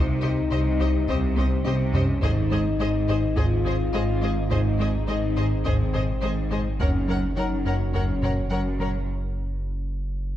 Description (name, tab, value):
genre	cinematic, hybrid orchestral and electronic film score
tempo	105 BPM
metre	4/4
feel	straight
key	unclear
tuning	A4 = 443 Hz
part	clear studio violin section	melody	0.0-8.9 s	Eb5 to Gb5	-36 LUFS	left 4 dB	none
part	rich symphonic violin section	second line	0.0-8.9 s	C5 to Db5	-36 LUFS	left 1 dB	none
part	clear symphonic viola section	accompaniment	0.0-8.9 s	G4 to Bb4	-36 LUFS	equal	none
part	mellow French horn section	sustained chords	0.0-9.1 s	C4 to F4	-29 LUFS	left 6 dB	none
part	warbly tape-like pad	sustained chords	0.0-9.1 s	C4 to Eb5	-35 LUFS	equal	chorus, built-in reverb
part	rubbery square bass	riff	0.0-9.0 s	C2 to Ab3	-29 LUFS	left 1 dB	none
part	clear symphonic double bass section	bass	0.0-9.0 s	Gb1 to C2	-31 LUFS	right 4 dB	none
part	rich symphonic cello section	bass	0.0-9.0 s	Gb2 to C3	-31 LUFS	right 2 dB	none
part	saturated sub bass	bass	0.0-10.4 s	Gb1 to C2	-28 LUFS	equal	none
part	taiko ensemble	drums	1.1-9.1 s	none	-29 LUFS	equal	none
room	moderate scoring stage reverb, RT60 1.8 s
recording	dark, warm production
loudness	-22 LUFS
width	side -12 dB against mid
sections	0.0-10.4 A section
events	drum fill 1.4-2.2; break 9.1-10.4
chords	0.0 Cm; 2.2 Ab; 6.8 Gb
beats	0.52 1.09 1.66 | 2.23 2.80 3.37 3.94 | 4.51 5.09 5.66 6.23 | 6.80 7.37 7.94 8.52 | 9.09 9.66 10.23